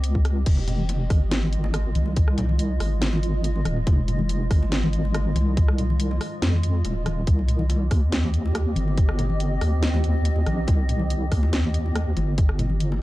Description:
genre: deep dubstep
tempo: 141 BPM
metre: 4/4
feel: half-time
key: F minor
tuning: A4 = 436 Hz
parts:
  - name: granular cloud pad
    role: sustained chords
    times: 0.0-13.0 s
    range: Ab3 to Eb5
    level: -32 LUFS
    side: equal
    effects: built-in reverb
  - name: deep soft wobble bass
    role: bass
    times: 0.0-13.0 s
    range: Eb1 to F2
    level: -22 LUFS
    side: equal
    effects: chorus
  - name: garage drum kit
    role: drums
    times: 0.0-12.9 s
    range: crash cymbal, hi-hat, rim click, snare drum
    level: -30 LUFS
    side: equal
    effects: none
  - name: electronic kick drum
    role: drums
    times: 0.2-12.5 s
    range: none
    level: -19 LUFS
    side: equal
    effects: none
  - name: bongos and congas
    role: percussion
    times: 0.6-13.0 s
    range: none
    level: -31 LUFS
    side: left 2 dB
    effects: none
room: little or no reverb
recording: dark, warm production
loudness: -20 LUFS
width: side -17 dB against mid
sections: 0.0-13.0 A section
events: none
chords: 0.5 Fm7; 7.3 Cm

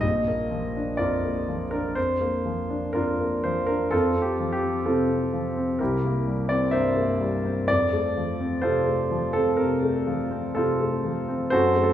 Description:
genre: classical, romantic character piece for solo piano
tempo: 62 BPM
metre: 4/4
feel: rubato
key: unclear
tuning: A4 = 439 Hz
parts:
  - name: warm concert grand piano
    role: solo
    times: 0.0-11.9 s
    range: Bb1 to E5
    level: -22 LUFS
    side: equal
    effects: none
room: wet recital hall reverb, RT60 1.7 s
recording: heard from further back in the room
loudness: -22 LUFS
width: side -11 dB against mid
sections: 0.0-11.9 A section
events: none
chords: 0.0 Bb; 3.9 F; 5.8 C7; 7.7 F

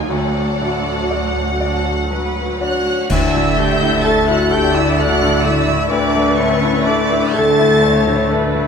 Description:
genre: cinematic, emotional film score for orchestra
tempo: 39-44 BPM (dotted quarters)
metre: 6/8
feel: rubato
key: D major from 3.1 s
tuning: A4 = 435 Hz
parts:
  - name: clear symphonic violin section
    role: melody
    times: 0.0-8.3 s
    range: F#5 to A6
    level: -23 LUFS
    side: left 1 dB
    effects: none
  - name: clear symphonic violin section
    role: second line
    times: 0.0-8.3 s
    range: A4 to A5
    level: -26 LUFS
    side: left 2 dB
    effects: none
  - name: bright grand piano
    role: accompaniment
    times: 0.0-8.7 s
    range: D2 to D5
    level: -22 LUFS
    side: left 4 dB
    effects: none
  - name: warm symphonic viola section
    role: accompaniment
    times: 0.0-8.7 s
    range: F#3 to E5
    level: -22 LUFS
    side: right 1 dB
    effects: none
  - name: bright symphonic double bass section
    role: bass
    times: 0.0-8.6 s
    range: D2 to D#2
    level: -23 LUFS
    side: right 3 dB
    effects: none
  - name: warm symphonic cello section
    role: bass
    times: 0.0-8.6 s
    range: D2 to D3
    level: -22 LUFS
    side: right 3 dB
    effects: none
  - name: cymbal swell, clash cymbals and concert bass drum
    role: percussion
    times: 0.1-4.9 s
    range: none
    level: -26 LUFS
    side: equal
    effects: none
  - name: dark French horn section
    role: sustained chords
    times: 2.6-8.3 s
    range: C#4 to A4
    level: -20 LUFS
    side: left 3 dB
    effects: none
  - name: bright clarinet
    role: second line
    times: 3.1-8.7 s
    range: A3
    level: -26 LUFS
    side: left 4 dB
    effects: none
  - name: clear oboe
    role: second line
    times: 3.1-8.7 s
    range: A4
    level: -26 LUFS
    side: right 3 dB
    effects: none
  - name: hollow concert flute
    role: second line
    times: 3.1-8.7 s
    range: E5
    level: -24 LUFS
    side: left 1 dB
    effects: none
  - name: timpani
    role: percussion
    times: 3.1-4.5 s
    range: D3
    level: -25 LUFS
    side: equal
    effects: none
room: moderate scoring stage reverb, RT60 1.8 s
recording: none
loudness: -13 LUFS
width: side -6 dB against mid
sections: 0.0-3.1 A section; 3.1-8.7 B section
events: band accent 3.1-4.1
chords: 0.1 D; 3.1 Dsus2

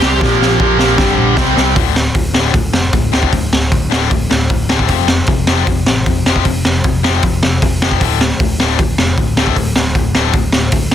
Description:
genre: punk rock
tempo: 154 BPM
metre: 4/4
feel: straight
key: D minor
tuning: A4 = 440 Hz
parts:
  - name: biting lead guitar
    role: melody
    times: 0.0-1.4 s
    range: G4 to G5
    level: -17 LUFS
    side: equal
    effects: overdrive
  - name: biting overdriven guitar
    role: riff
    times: 0.0-1.7 s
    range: G2 to C4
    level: -16 LUFS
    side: right 16 dB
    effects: none
  - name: distorted electric guitar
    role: riff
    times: 0.0-10.9 s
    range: D2 to C4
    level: -18 LUFS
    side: left 15 dB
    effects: overdrive
  - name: overdriven picked electric bass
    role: bass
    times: 0.0-10.9 s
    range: D1 to C2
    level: -17 LUFS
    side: right 1 dB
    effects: none
  - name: raw garage drum kit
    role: drums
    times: 0.0-10.9 s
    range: hi-hat, kick drum, snare drum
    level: -14 LUFS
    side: equal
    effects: none
room: little or no reverb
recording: dense, heavily limited modern master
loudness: -11 LUFS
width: side -10 dB against mid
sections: 0.0-1.8 A section; 1.8-10.9 B section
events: drum fill 0.2-1.8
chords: 0.2 Bb5; 1.0 Gm; 1.4 C5; 1.8 D5; 4.9 F5; 8.0 D5

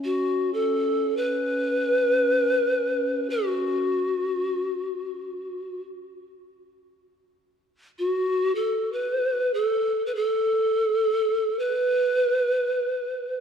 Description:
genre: world meditative, free-time meditation music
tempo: free time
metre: none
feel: none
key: unclear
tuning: A4 = 440 Hz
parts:
  - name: mellow pan flute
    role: melody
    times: 0.0-13.4 s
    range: F#4 to B4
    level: -22 LUFS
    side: equal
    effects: tape echo
  - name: glass harmonica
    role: texture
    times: 0.0-3.8 s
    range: C#4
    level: -32 LUFS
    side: left 1 dB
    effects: stereo widening
room: wet concert hall reverb, RT60 1.9 s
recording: none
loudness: -22 LUFS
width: side -7 dB against mid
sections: 0.0-13.4 A section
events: none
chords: none

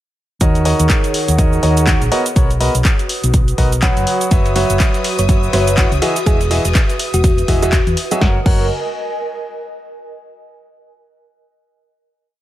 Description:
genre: piano house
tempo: 123 BPM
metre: 4/4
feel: swing 59% on 16ths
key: F# mixolydian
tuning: A4 = 442 Hz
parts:
  - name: clear concert grand piano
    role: riff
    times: 0.4-8.6 s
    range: D#3 to F#5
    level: -19 LUFS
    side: right 1 dB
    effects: sidechain pumping, digital delay
  - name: hollow-body short-scale fingered electric bass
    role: bass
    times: 0.4-8.7 s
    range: E1 to E2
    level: -17 LUFS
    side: equal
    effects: sidechain pumping
  - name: electronic kick drum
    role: drums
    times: 0.4-8.6 s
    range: none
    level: -15 LUFS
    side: equal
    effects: none
  - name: punchy analog drum machine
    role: drums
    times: 0.4-8.6 s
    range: crash cymbal, handclaps, hi-hat, shaker, snare drum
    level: -22 LUFS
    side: equal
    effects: none
  - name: airy breathy pad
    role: texture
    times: 0.4-10.1 s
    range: F#4 to D#6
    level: -25 LUFS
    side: equal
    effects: chorus, sidechain pumping
  - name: bright studio string section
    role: sustained chords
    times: 4.3-8.2 s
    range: E5 to D#6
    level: -28 LUFS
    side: left 6 dB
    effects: sidechain pumping
  - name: dusty soul sampler-style drum kit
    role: drums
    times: 4.3-8.1 s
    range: hi-hat, ride cymbal, snare drum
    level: -30 LUFS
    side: right 2 dB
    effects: none
  - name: thumb-piano-like synth pluck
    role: melody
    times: 5.2-7.8 s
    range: F#4 to C#5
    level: -23 LUFS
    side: left 1 dB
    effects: chorus, digital delay
room: light reverb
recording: none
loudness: -12 LUFS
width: side -14 dB against mid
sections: 0.4-8.2 groove; 8.2-10.2 final chord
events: none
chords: 0.4 D#m7; 2.4 Bmaj7; 4.1 F#7sus4; 6.0 Emaj9; 8.2 F#

